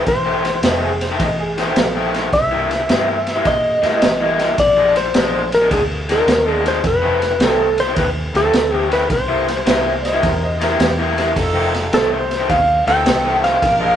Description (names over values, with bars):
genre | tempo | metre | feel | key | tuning
electric blues shuffle | 106 BPM | 4/4 | swing 67% on 8ths | F mixolydian | A4 = 440 Hz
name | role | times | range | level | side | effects
clean lap steel guitar | melody | 0.0-14.0 s | Ab4 to G5 | -16 LUFS | equal | none
vintage muted fingered electric bass | bass | 0.0-14.0 s | F1 to Bb2 | -25 LUFS | equal | none
crunchy breakbeat drum kit | drums | 0.1-13.8 s | kick drum, ride cymbal, snare drum | -20 LUFS | right 1 dB | none
raw garage guitar | riff | 0.3-14.0 s | F2 to E4 | -21 LUFS | left 2 dB | overdrive
clear upright piano | second line | 0.7-2.2, 10.0-11.3 s | Bb3 to F5 | -24 LUFS | right 2 dB | none
bright horn section | stabs | 11.4-14.0 s | D4 to Bb4 | -23 LUFS | right 1 dB | none
room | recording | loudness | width
moderate stone room reverb, RT60 1.3 s | rough rehearsal-room recording, nothing above 10.4 kHz | -14 LUFS | side -10 dB against mid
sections
0.0-11.4 A section; 11.4-14.0 B section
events
electric slide guitar solo 11.4-14.0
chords
0.0 F7; 2.3 C7; 4.6 Bb7; 6.8 F7; 9.1 C7; 11.4 F7